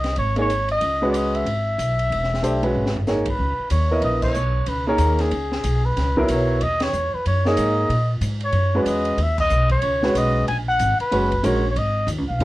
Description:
modal jazz; 186 BPM; 4/4; swing 61% on 8ths; C# dorian from 3.4 s; A4 = 441 Hz
dark trumpet; melody; 0.0-12.4 s; G#4 to G#5; -23 LUFS; equal; cassette tape
upright bass; bass; 0.0-12.4 s; Fb1 to A#2; -22 LUFS; equal
open jazz drum kit; drums; 0.0-12.4 s; crash cymbal, hi-hat, kick drum, ride cymbal, snare drum, toms; -31 LUFS; equal
clear upright piano; accompaniment; 0.4-12.4 s; F#3 to D#5; -21 LUFS; equal; cassette tape
light reverb; home recording on cassette; -18 LUFS; side -17 dB against mid
0.0-3.4 A section; 3.4-12.4 B section
drum fill 2.7-3.1; band accent 3.2, 4.2, 6.8, 9.3
0.0 Dbm11; 3.4 C#9sus4
0.17 0.49 | 0.81 1.14 1.46 1.78 | 2.10 2.42 2.75 3.07 | 3.39 3.71 4.04 4.36 | 4.68 5.00 5.32 5.64 | 5.96 6.29 6.61 6.93 | 7.25 7.57 7.90 8.22 | 8.54 8.86 9.18 9.51 | 9.83 10.15 10.47 10.79 | 11.12 11.44 11.76 12.08 | 12.40

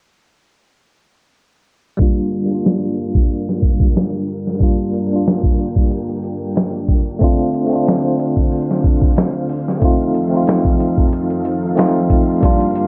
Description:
trip hop; 92 BPM; 4/4; swing 54% on 16ths; G minor; A4 = 440 Hz
tine electric piano; accompaniment; 2.0-12.9 s; G3 to F4; -20 LUFS; equal; tremolo, tape echo
string machine, cellos; sustained chords; 2.0-12.9 s; D3 to G5; -25 LUFS; equal; ensemble chorus
boom bap sampler-style drum kit; drums; 2.0-12.9 s; hi-hat, kick drum, snare drum; -18 LUFS; equal
light reverb; worn, warbling old tape, cassette tape, warbly pitch drift, low-pass filter; -16 LUFS; mono
2.0-12.9 A section
filter sweep 2.0-12.9
2.0 Gm7; 7.2 Dm7; 9.8 F7
| 2.00 2.65 3.30 3.95 | 4.61 5.26 5.91 6.56 | 7.21 7.87 8.52 9.17 | 9.82 10.48 11.13 11.78 | 12.43

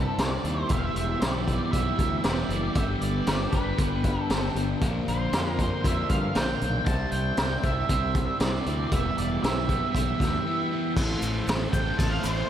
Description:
psychedelic rock; 117 BPM; 4/4; straight; A4 = 440 Hz
octave-fuzz lead guitar; melody; 0.0-12.5 s; B4 to A5; -31 LUFS; right 2 dB; distortion, tape echo
combo organ; sustained chords; 0.0-12.5 s; C4 to C6; -38 LUFS; right 1 dB; lush chorus
crunchy overdriven guitar; riff; 0.0-12.5 s; G2 to A4; -30 LUFS; equal; phaser
fuzz fingered electric bass; bass; 0.0-12.4 s; E1 to G2; -30 LUFS; equal; overdrive
raw garage drum kit; drums; 0.2-12.4 s; crash cymbal, hi-hat, kick drum, ride cymbal, snare drum; -28 LUFS; equal
egg shaker; percussion; 11.0-12.4 s; -47 LUFS; left 7 dB
moderate plate reverb, RT60 2.5 s; dreamy mix soaked in reverb; -24 LUFS; side -10 dB against mid
0.0-11.0 A section; 11.0-12.5 B section
0.0 Cadd9; 0.7 Em; 2.8 G; 4.8 Bbadd9; 6.9 Cadd9; 8.9 Em; 11.0 Am
0.19 | 0.70 1.22 1.73 2.25 | 2.76 3.27 3.79 4.30 | 4.81 5.33 5.84 6.35 | 6.87 7.38 7.89 8.40 | 8.92 9.43 9.94 10.45 | 10.97 11.48 11.99

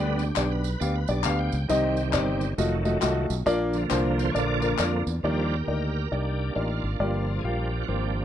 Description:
uptempo gospel; 136 BPM; 4/4; swing 62% on 8ths; Eb major; A4 = 440 Hz
warm upright piano; accompaniment; 0.0-8.2 s; G2 to F5; -27 LUFS; left 1 dB
bright tonewheel organ; sustained chords; 0.0-8.2 s; D3 to G5; -31 LUFS; right 4 dB; slow rotary speaker, chorus vibrato
fingered electric bass; bass; 0.0-8.2 s; F1 to F2; -28 LUFS; equal
tambourine and handclaps; percussion; 0.2-5.1 s; -33 LUFS; left 6 dB
small room ambience; dry, close 1970s-style studio recording; -23 LUFS; side -10 dB against mid
0.0-5.2 A section; 5.2-8.2 B section
tonewheel organ solo 0.0-5.2, 5.2-8.2
0.0 G; 1.7 Cm; 2.6 F7b9; 3.5 Bb; 5.2 Ebmaj7; 7.0 Gm7
0.36 0.81 1.25 | 1.69 2.14 2.58 3.02 | 3.46 3.91 4.35 4.79 | 5.23 5.67 6.12 6.56 | 7.00 7.45 7.89

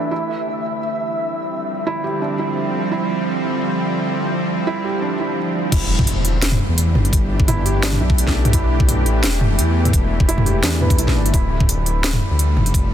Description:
half-time drum and bass; 171 BPM; 4/4; half-time; E phrygian; A4 = 440 Hz
bowed-like drone; sustained chords; 0.0-12.9 s; D3 to A4; -23 LUFS; right 1 dB; built-in reverb, vintage 12-bit sampler grit, sidechain pumping
felt-muted upright piano; arpeggios; 0.0-12.9 s; D4 to B4; -26 LUFS; right 3 dB; vintage 12-bit sampler grit, dub echo
flickering grainy texture; texture; 0.0-5.7 s; E5; -28 LUFS; equal; built-in reverb
dark detuned saw bass; bass; 5.7-12.9 s; D1 to E2; -19 LUFS; equal
drum and bass drum kit; drums; 5.7-12.8 s; crash cymbal, hi-hat, snare drum, toms; -21 LUFS; equal
electronic kick drum; drums; 5.7-12.8 s; -18 LUFS; equal
impact; sound effects; 5.7-7.1 s; -27 LUFS; left 1 dB
light reverb; dense, heavily limited modern master; -16 LUFS; side -10 dB against mid
0.0-5.7 A section; 5.7-12.9 B section
drop 5.7-12.9; impact 5.7-7.1
0.1 Dmadd9; 5.7 Em7; 11.3 Dmadd9
| 0.11 0.46 0.81 1.16 | 1.51 1.86 2.21 2.57 | 2.92 3.27 3.62 3.97 | 4.32 4.67 5.02 5.37 | 5.72 6.08 6.43 6.78 | 7.13 7.48 7.83 8.18 | 8.53 8.88 9.23 9.58 | 9.94 10.29 10.64 10.99 | 11.34 11.69 12.04 12.39 | 12.74

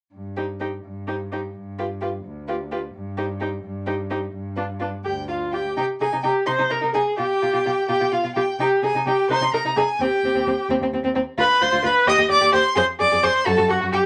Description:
quick classical-period movement for string quartet; 86 BPM (dotted quarters); 6/8; straight; C minor; A4 = 440 Hz
rich cello; bass; 0.1-14.0 s; D2 to C3; -34 LUFS; equal
rich violin; melody; 0.4-14.0 s; B4 to Eb6; -28 LUFS; equal
warm violin; second line; 0.4-14.0 s; C4 to Ab4; -28 LUFS; equal
rich viola; accompaniment; 0.4-14.1 s; D4 to Eb5; -23 LUFS; equal
moderate studio ambience, RT60 0.5 s; -22 LUFS; mono
0.1-5.8 A section; 5.8-14.1 B section
0.1 Cm/G; 1.5 G7; 2.9 Cm/G; 4.3 G7(no3); 5.8 Cm; 7.2 G7/B; 8.6 Cm; 10.0 Cm/Eb; 11.4 Dm6; 12.1 Cmadd9/Eb; 12.8 Fm; 13.5 F#m
| 0.13 0.84 | 1.55 2.25 | 2.94 3.64 | 4.33 5.04 | 5.77 6.48 | 7.18 7.89 | 8.60 9.30 | 10.00 10.70 | 11.39 12.08 | 12.77 13.46

